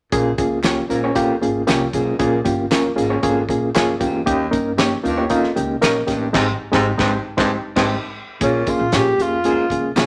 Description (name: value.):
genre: uptempo 1960s-style soul.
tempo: 116 BPM.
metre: 4/4.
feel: straight.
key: Bb dorian.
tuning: A4 = 440 Hz.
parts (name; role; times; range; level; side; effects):
reed electric piano; accompaniment; 0.1-10.1 s; Ab3 to Bb4; -21 LUFS; equal; overdrive, fast tremolo.
breathy baritone saxophone; riff; 0.1-9.7 s; Eb2 to Bb2; -28 LUFS; equal; none.
upright bass; bass; 0.1-10.1 s; G1 to Bb2; -30 LUFS; equal; none.
warm soul drum kit; drums; 0.1-10.1 s; crash cymbal, hi-hat, kick drum, snare drum; -25 LUFS; equal; none.
tambourine and handclaps; percussion; 0.4-10.1 s; none; -34 LUFS; equal; none.
electric guitar through a small old amp; stabs; 0.6-10.1 s; Ab3 to Db5; -28 LUFS; equal; warbly pitch drift.
breathy tenor saxophone; melody; 8.4-10.0 s; Db4 to G4; -22 LUFS; equal; none.
room: moderate studio reverb, RT60 0.8 s.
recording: none.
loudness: -19 LUFS.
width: mono.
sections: 0.1-8.4 A section; 8.4-10.1 B section.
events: band accent 6.3-8.4.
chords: 0.1 Bbm7; 4.3 Eb7; 6.3 Abmaj7; 8.4 Bbm7.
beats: | 0.13 0.65 1.16 1.68 | 2.20 2.72 3.23 3.75 | 4.27 4.79 5.31 5.82 | 6.34 6.86 7.38 7.89 | 8.41 8.93 9.45 9.97.